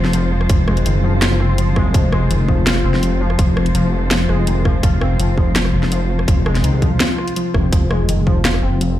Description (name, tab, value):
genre	half-time drum and bass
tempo	166 BPM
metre	4/4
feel	half-time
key	F phrygian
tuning	A4 = 439 Hz
part	warm studio cello section	sustained chords	0.0-7.7 s	C3 to C5	-25 LUFS	equal	sidechain pumping
part	warbly dusty pluck	arpeggios	0.0-9.0 s	C3 to F4	-21 LUFS	left 2 dB	lush chorus, ping-pong delay
part	deep soft wobble bass	bass	0.0-9.0 s	F1 to C2	-17 LUFS	equal	chorus
part	drum and bass drum kit	drums	0.0-8.9 s	hi-hat, rim click, snare drum	-21 LUFS	equal	overdrive
part	electronic kick drum	drums	0.5-8.3 s	none	-15 LUFS	equal	overdrive
room	light reverb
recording	played on a big sound system in a bare room, large studio reverb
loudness	-14 LUFS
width	side -13 dB against mid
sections	0.0-7.7 A section; 7.7-9.0 A section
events	drop 0.0-7.7, 7.7-9.0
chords	0.0 Fm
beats	0.14 | 0.50 0.86 1.22 1.58 | 1.94 2.31 2.67 3.03 | 3.39 3.75 4.11 4.47 | 4.83 5.20 5.56 5.92 | 6.28 6.64 7.00 7.37 | 7.73 8.09 8.45 8.81